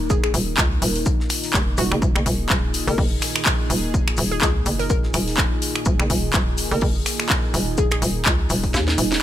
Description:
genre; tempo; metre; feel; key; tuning
bass house; 125 BPM; 4/4; swing 56% on 16ths; Eb minor; A4 = 440 Hz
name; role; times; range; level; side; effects
sweeping resonant pad; sustained chords; 0.0-9.2 s; Bb2 to Bb4; -28 LUFS; right 1 dB; chorus, sidechain pumping
hollow knocking FM bass; bass; 0.0-9.2 s; Eb1 to Eb2; -24 LUFS; equal; sidechain pumping
hollow square pluck; melody; 0.1-8.0 s; Gb4 to Bb4; -29 LUFS; left 2 dB; chorus, ping-pong delay
damped 70s drum kit; drums; 0.1-9.2 s; hi-hat, shaker, snare drum; -33 LUFS; left 3 dB; sidechain pumping on hats, high-pass filter on hats, small room ambience, high-pass filter on snare, sidechain pumping on perc, high-pass filter on perc, high-pass filter on room
electronic kick drum; drums; 0.1-8.7 s; none; -22 LUFS; equal; small room ambience
house drum kit; drums; 0.2-9.2 s; finger snaps, handclaps, hi-hat, snare drum; -23 LUFS; left 1 dB; overdrive, small room ambience
room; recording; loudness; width
little or no reverb; none; -18 LUFS; side -12 dB against mid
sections
0.0-9.2 A section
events
kick drops out 8.7-9.2; drum fill 8.7-9.2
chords
0.0 Eb5

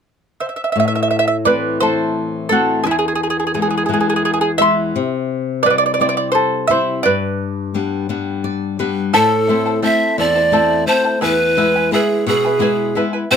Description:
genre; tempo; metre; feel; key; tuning
andean folk; 57 BPM (dotted quarters); 6/8; straight; unclear; A4 = 440 Hz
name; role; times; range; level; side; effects
charango; accompaniment; 0.4-13.4 s; E4 to C6; -17 LUFS; right 2 dB; none
flamenco guitar; accompaniment; 0.8-13.4 s; E2 to D5; -20 LUFS; left 5 dB; none
breathy pan flute; melody; 9.1-13.4 s; G#4 to E5; -15 LUFS; right 2 dB; none
room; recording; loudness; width
little or no reverb; close, detailed microphones; -14 LUFS; side -7 dB against mid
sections
0.8-9.1 A section; 9.1-13.4 B section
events
charango solo 0.8-9.1; nylon-string guitar fill 8.1-9.1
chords
0.0 N.C.; 0.8 Am; 2.9 E; 5.0 C; 7.1 G; 9.1 Am; 11.2 E

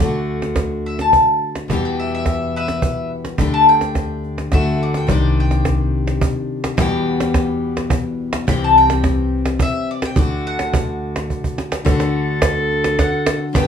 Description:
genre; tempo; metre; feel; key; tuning
acoustic folk duo or small band; 106 BPM; 3/4; straight; unclear; A4 = 440 Hz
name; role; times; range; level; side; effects
mandolin; melody; 0.0-13.7 s; A4 to B5; -17 LUFS; left 2 dB; none
picked steel-string acoustic guitar; accompaniment; 0.0-13.7 s; E2 to G4; -21 LUFS; left 3 dB; none
upright bass; bass; 0.0-13.0 s; C2 to E2; -23 LUFS; equal; none
cajon; percussion; 0.4-13.7 s; none; -20 LUFS; right 2 dB; none
warm clarinet; second line; 11.9-13.7 s; A4 to B4; -21 LUFS; right 2 dB; none
room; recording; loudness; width
light reverb; studio ambience; -16 LUFS; side -7 dB against mid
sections
0.0-11.9 A section; 11.9-13.6 B section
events
mandolin solo 0.0-11.9; drum fill 11.3-11.9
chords
0.0 D; 1.7 Em; 3.4 Dsus4; 4.5 D; 5.1 Cmadd9; 6.8 Em; 8.5 C; 10.2 D

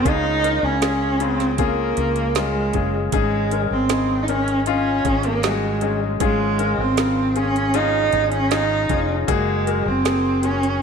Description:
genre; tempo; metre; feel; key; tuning
pop ballad; 78 BPM; 4/4; straight; Db major; A4 = 439 Hz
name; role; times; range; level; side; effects
warm cello; melody; 0.0-10.8 s; Ab3 to Eb4; -20 LUFS; right 3 dB; none
clear baby grand piano; accompaniment; 0.0-10.8 s; Ab2 to Bb4; -24 LUFS; left 12 dB; none
mellow fretless electric bass; bass; 0.1-10.8 s; F1 to Db2; -25 LUFS; equal; none
smooth R&B drum kit; drums; 0.1-10.8 s; hi-hat, kick drum, snare drum; -26 LUFS; right 4 dB; none
room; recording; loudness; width
moderate echo chamber reverb, RT60 2.1 s; 1960s-style stereo; -18 LUFS; side -6 dB against mid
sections
0.0-10.8 A section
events
none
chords
0.1 Db; 3.1 Absus4; 6.2 Db/Ab; 9.3 Gbadd9

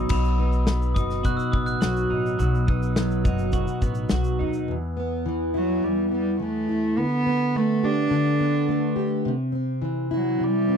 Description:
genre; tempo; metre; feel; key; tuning
acoustic pop; 105 BPM; 4/4; straight; unclear; A4 = 439 Hz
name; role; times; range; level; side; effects
glockenspiel with rubber mallets; second line; 0.0-2.8 s; B5 to F#6; -33 LUFS; left 1 dB; none
fingerpicked plugged-in steel-string acoustic guitar; accompaniment; 0.0-10.8 s; E2 to G4; -24 LUFS; left 1 dB; double-tracked left and right
twelve-string electric guitar; arpeggios; 0.0-5.2 s; F#3 to F#4; -33 LUFS; right 6 dB; none
upright bass; bass; 0.0-4.7 s; F#1 to D#2; -25 LUFS; equal; none
natural country drum kit; drums; 0.1-4.7 s; crash cymbal, kick drum, shaker, snare drum; -24 LUFS; left 1 dB; none
warm cello; melody; 5.6-10.8 s; F#3 to D4; -24 LUFS; right 2 dB; none
room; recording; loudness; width
little or no reverb; dry, close 1970s-style studio recording; -21 LUFS; side -7 dB against mid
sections
0.1-4.7 A section; 4.7-10.8 B section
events
none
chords
0.1 B; 4.7 E5; 7.0 Gadd9/D; 9.3 C

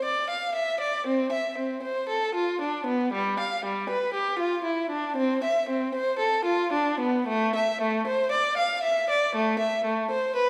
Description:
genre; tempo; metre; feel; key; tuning
classical, baroque-style suite movement for unaccompanied violin; 58 BPM; 4/4; rubato; C major; A4 = 441 Hz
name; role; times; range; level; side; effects
rich violin; solo; 0.0-10.5 s; G3 to F5; -26 LUFS; equal; none
room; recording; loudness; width
wet scoring stage reverb, RT60 1.4 s; recorded in a church or concert hall; -26 LUFS; mono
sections
0.0-10.5 A section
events
none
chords
none

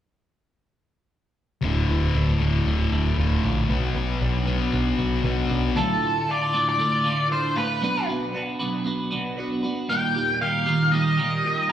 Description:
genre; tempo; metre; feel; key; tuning
rock; 116 BPM; 4/4; straight; unclear; A4 = 440 Hz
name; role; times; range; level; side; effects
twelve-string electric guitar; arpeggios; 1.6-11.7 s; D2 to B4; -26 LUFS; right 2 dB; phaser, digital delay
thick fuzz guitar; riff; 1.6-5.8 s; D2 to B3; -25 LUFS; left 5 dB; distortion, slapback echo
growling picked electric bass; bass; 1.6-5.7 s; D1 to B1; -23 LUFS; equal; overdrive
octave-fuzz lead guitar; melody; 5.8-11.7 s; A4 to G5; -24 LUFS; left 1 dB; distortion, slapback echo
room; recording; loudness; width
light reverb, digital ambience; live gig heard through the venue's PA, club reverb; -21 LUFS; side -10 dB against mid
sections
1.6-5.8 A section; 5.8-11.7 B section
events
none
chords
1.6 Dm; 3.7 Bm; 5.8 Dm; 7.8 Bm; 9.9 Eb

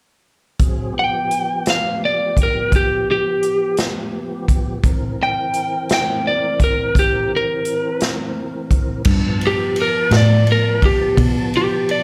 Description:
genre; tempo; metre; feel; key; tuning
slow blues; 57 BPM (dotted quarters); 12/8; straight; G mixolydian; A4 = 439 Hz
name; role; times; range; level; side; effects
tonewheel organ; sustained chords; 0.6-12.0 s; E3 to A5; -29 LUFS; equal; slow rotary speaker, overdrive, chorus vibrato
swinging big-band drum kit; drums; 0.6-12.0 s; crash cymbal, hi-hat, kick drum, ride cymbal, snare drum; -22 LUFS; equal; none
lightly driven lead guitar; melody; 1.0-12.0 s; G4 to G5; -20 LUFS; equal; none
vintage muted fingered electric bass; bass; 9.1-12.0 s; G2 to B2; -20 LUFS; equal; none
room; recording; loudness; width
small room ambience; live gig heard through the venue's PA, club reverb; -18 LUFS; mono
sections
0.6-9.1 A section; 9.1-12.0 B section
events
lead electric guitar solo 9.1-12.0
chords
0.6 G7; 4.8 C7; 9.1 G9

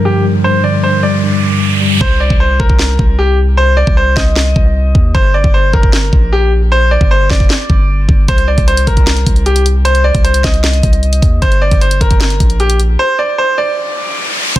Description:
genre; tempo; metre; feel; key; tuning
hip hop, trap; 153 BPM; 4/4; half-time; C minor; A4 = 440 Hz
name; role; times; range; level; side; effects
mellow tine electric piano; accompaniment; 0.0-2.0, 14.6 s; G2 to G3; -12 LUFS; left 1 dB; medium stereo tremolo, low-pass filter
dark analog pad; sustained chords; 0.0-2.0 s; G2 to Bb4; -19 LUFS; equal; chorus, low-pass filter
riser and impact; sound effects; 0.2-2.0, 13.7-14.6 s; none; -19 LUFS; right 1 dB; none
bright concert grand piano; melody; 0.1-14.6 s; G4 to Eb5; -15 LUFS; equal; low-pass filter, ping-pong delay
long sustained 808-style bass; bass; 2.0-14.6 s; G1 to Eb2; -12 LUFS; equal; none
trap drum kit; drums; 2.0-14.6 s; crash cymbal, hi-hat, kick drum, snare drum; -11 LUFS; equal; none
warm velvety synth lead; second line; 14.6 s; C5; -19 LUFS; right 1 dB; chorus, tremolo
room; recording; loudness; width
little or no reverb; dense, heavily limited modern master; -9 LUFS; side -14 dB against mid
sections
0.0-2.0 A section; 2.0-14.6 B section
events
riser 0.2-2.0, 13.7-14.6; hi-hats muted 2.0-8.3; break 13.0-14.6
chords
0.0 Gm7; 2.0 Cm; 5.1 Gm; 8.3 Cm; 11.4 Gm

